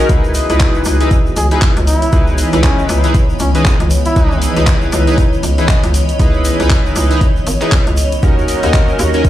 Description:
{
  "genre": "deep house",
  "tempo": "118 BPM",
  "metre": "4/4",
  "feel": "swing 59% on 16ths",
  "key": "C# dorian",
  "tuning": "A4 = 440 Hz",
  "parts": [
    { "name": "chorused polysynth", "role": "stabs", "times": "0.0-9.3 s", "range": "C#4 to B4", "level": "-18 LUFS", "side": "equal", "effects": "sidechain pumping, tape echo" },
    { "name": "hollow knocking FM bass", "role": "bass", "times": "0.0-9.3 s", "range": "G#1 to D#2", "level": "-16 LUFS", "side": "equal", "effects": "tube saturation, sidechain pumping" },
    { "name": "granular cloud pad", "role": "texture", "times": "0.0-9.3 s", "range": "E3 to B5", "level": "-22 LUFS", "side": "equal", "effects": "built-in reverb, sidechain pumping" },
    { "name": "dark analog pad", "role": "sustained chords", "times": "0.1-9.3 s", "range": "E3 to D#5", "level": "-24 LUFS", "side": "left 1 dB", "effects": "chorus, vintage 12-bit sampler grit, sidechain pumping" },
    { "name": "deep house drum kit", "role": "drums", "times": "0.1-9.3 s", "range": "handclaps, hi-hat", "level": "-22 LUFS", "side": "left 1 dB", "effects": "overdrive" },
    { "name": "electronic kick drum", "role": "drums", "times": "0.1-9.3 s", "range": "none", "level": "-13 LUFS", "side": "equal", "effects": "overdrive" },
    { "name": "egg shaker", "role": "percussion", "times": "0.1-9.3 s", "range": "none", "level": "-30 LUFS", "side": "right 4 dB", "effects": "none" },
    { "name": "trumpet with bucket mute", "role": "melody", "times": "1.4-4.4 s", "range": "C#4 to G#4", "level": "-21 LUFS", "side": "equal", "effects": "tape echo" }
  ],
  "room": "light reverb",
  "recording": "played on a big sound system in a bare room, large studio reverb",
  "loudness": "-10 LUFS",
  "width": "side -13 dB against mid",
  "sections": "0.0-9.3 A section",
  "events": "none",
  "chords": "0.1 C#m9; 8.2 D#m7"
}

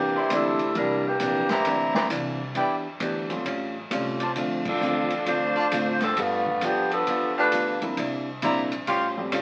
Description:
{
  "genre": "jazz, big band swing",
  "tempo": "133 BPM",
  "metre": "4/4",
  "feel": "swing 65% on 8ths",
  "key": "C mixolydian",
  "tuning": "A4 = 440 Hz",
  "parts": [
    { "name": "mellow saxophone section", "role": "melody", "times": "0.0-1.9, 4.7-7.8 s", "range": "E3 to C5", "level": "-26 LUFS", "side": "equal", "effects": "none" },
    { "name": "hollow-body jazz guitar", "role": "accompaniment", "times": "0.0-9.4 s", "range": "A2 to A4", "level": "-32 LUFS", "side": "equal", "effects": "none" },
    { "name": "upright bass", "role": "bass", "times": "0.0-9.4 s", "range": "E#1 to A2", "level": "-42 LUFS", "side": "equal", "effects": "none" },
    { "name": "bright trumpet section", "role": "stabs", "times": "0.2-9.1 s", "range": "E4 to B#5", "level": "-29 LUFS", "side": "equal", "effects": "none" },
    { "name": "swinging big-band drum kit", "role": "drums", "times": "0.3-9.4 s", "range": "crash cymbal, hi-hat, kick drum, ride cymbal, snare drum", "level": "-35 LUFS", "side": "equal", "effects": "none" },
    { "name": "clear concert grand piano", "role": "accompaniment", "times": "0.8-5.1, 7.8-9.4 s", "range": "F3 to E5", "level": "-35 LUFS", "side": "equal", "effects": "none" }
  ],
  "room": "wet studio reverb, RT60 0.7 s",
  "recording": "very old 78 rpm record, vinyl crackle",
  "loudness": "-25 LUFS",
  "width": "mono",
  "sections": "0.0-9.4 A section",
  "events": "band accent 4.6",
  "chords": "0.0 C9; 2.6 Em7; 3.5 A7alt; 4.4 Dm7; 6.2 G9; 8.0 C9; 8.9 A7alt"
}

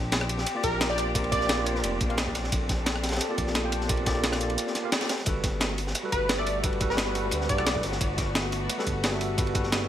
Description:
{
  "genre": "liquid drum and bass",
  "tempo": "175 BPM",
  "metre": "4/4",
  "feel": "straight",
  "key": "G major",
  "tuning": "A4 = 441 Hz",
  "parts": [
    { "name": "muted studio string section", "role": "sustained chords", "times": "0.0-9.9 s", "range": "A3 to A4", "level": "-34 LUFS", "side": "left 2 dB", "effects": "sidechain pumping" },
    { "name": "smooth synth bass", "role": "bass", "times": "0.0-9.9 s", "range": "F1 to G2", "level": "-32 LUFS", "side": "equal", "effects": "none" },
    { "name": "breakbeat sampler-style drum kit", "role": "drums", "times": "0.1-9.8 s", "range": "hi-hat, rim click, snare drum", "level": "-29 LUFS", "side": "equal", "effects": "none" },
    { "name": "crunchy breakbeat drum kit", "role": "drums", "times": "0.1-9.8 s", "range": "ride cymbal, snare drum", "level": "-34 LUFS", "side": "equal", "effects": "high-pass filter on cymbals, high-pass filter on snare, high-pass filter on room" },
    { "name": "tine electric piano", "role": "accompaniment", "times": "0.5-9.9 s", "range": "G3 to G5", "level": "-32 LUFS", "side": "right 1 dB", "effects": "medium stereo tremolo, ping-pong delay" },
    { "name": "plucky unison lead", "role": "melody", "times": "0.6-1.8, 6.1-7.8 s", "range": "Bb4 to D5", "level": "-31 LUFS", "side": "equal", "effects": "dub echo" },
    { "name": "electronic kick drum", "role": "drums", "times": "0.6-9.6 s", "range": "none", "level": "-30 LUFS", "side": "equal", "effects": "none" }
  ],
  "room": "light reverb, studio reverb",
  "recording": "none",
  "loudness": "-24 LUFS",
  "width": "side -11 dB against mid",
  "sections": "0.0-5.3 A section; 5.3-9.9 A section",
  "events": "drop 0.0-5.3, 5.3-9.9; band accent 4.9",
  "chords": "0.0 Bb6; 5.3 Gmaj9"
}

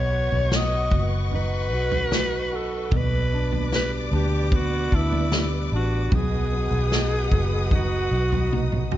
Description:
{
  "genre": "pop ballad",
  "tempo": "75 BPM",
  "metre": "4/4",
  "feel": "straight",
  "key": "unclear",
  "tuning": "A4 = 441 Hz",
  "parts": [
    { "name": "raspy alto saxophone", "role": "melody", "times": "0.0-8.9 s", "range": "E4 to D#5", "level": "-27 LUFS", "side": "equal", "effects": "ping-pong delay" },
    { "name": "warm grand piano", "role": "accompaniment", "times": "0.0-9.0 s", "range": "B2 to F#4", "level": "-31 LUFS", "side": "right 1 dB", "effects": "none" },
    { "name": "warm symphonic string section", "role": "sustained chords", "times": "0.0-9.0 s", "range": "B4 to D#6", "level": "-33 LUFS", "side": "left 1 dB", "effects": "none" },
    { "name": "vintage muted fingered electric bass", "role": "bass", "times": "0.0-9.0 s", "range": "F#1 to D2", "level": "-25 LUFS", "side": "equal", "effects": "none" },
    { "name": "unplugged drum kit", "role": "drums", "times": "0.3-9.0 s", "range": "kick drum, snare drum, toms", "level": "-26 LUFS", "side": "equal", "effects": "none" }
  ],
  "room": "light reverb",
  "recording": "nothing above 7.7 kHz",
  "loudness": "-20 LUFS",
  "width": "side -13 dB against mid",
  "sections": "0.0-9.0 A section",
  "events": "drum fill 8.5-9.0",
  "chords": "0.0 Badd9; 2.9 G/B; 6.1 B"
}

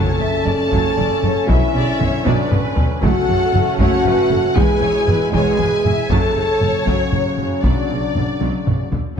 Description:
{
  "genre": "cinematic, epic orchestral film score",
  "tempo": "78 BPM (dotted quarters)",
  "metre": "6/8",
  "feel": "straight",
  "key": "F# minor",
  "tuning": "A4 = 438 Hz",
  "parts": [
    { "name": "rich symphonic violin section", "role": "melody", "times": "0.0-8.9 s", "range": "C#5 to A5", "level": "-25 LUFS", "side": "left 5 dB", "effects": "none" },
    { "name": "dark symphonic violin section", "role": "second line", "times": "0.0-9.2 s", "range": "A4 to E5", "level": "-26 LUFS", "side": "left 3 dB", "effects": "none" },
    { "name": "warm symphonic viola section", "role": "accompaniment", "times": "0.0-9.0 s", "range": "C#3 to E4", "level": "-26 LUFS", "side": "right 2 dB", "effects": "none" },
    { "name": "bright trombone section", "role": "sustained chords", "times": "0.0-8.9 s", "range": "B2 to C#4", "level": "-26 LUFS", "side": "right 2 dB", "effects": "none" },
    { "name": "dark French horn section", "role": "sustained chords", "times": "0.0-9.2 s", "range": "F#3 to A4", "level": "-20 LUFS", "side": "left 1 dB", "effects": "none" },
    { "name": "warm studio double bass section", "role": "bass", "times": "0.0-9.0 s", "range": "E1 to B1", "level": "-25 LUFS", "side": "right 4 dB", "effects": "none" },
    { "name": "warm symphonic cello section", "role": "bass", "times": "0.0-9.0 s", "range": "E2 to B2", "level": "-24 LUFS", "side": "right 2 dB", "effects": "none" },
    { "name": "timpani", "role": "percussion", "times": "0.0-0.7 s", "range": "F#2", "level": "-26 LUFS", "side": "left 1 dB", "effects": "none" },
    { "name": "taiko ensemble", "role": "drums", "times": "0.5-9.2 s", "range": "none", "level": "-20 LUFS", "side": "left 1 dB", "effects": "none" }
  ],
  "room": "wet scoring stage reverb, RT60 1.8 s",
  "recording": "dark, warm production",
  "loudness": "-14 LUFS",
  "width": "side -7 dB against mid",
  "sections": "0.0-9.2 A section",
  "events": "drum fill 2.3-3.0, 8.4-9.2",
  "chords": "0.0 F#m; 1.5 Bmadd9; 3.0 F#m; 4.6 E; 6.1 F#m; 7.6 Bmadd9"
}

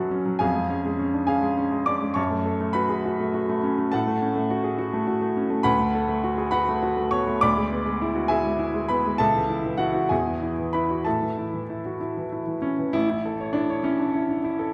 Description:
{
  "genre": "classical, virtuoso piano study",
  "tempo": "68 BPM (dotted quarters)",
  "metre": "6/8",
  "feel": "rubato",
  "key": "F# minor, A major from 5.7 s",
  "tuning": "A4 = 440 Hz",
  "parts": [
    { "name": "bright baby grand piano", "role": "solo", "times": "0.0-14.7 s", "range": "A1 to D6", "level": "-24 LUFS", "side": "equal", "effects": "none" }
  ],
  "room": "wet recital hall reverb, RT60 1.6 s",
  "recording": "heard from further back in the room",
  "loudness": "-24 LUFS",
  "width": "mono",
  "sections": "0.0-12.9 A section; 12.9-14.7 B section",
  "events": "none",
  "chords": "0.4 C#/E#; 2.2 F#m; 3.9 F#m/A; 5.7 Bm7/D; 7.4 E7/D; 9.2 A/C#; 10.1 E; 11.1 A"
}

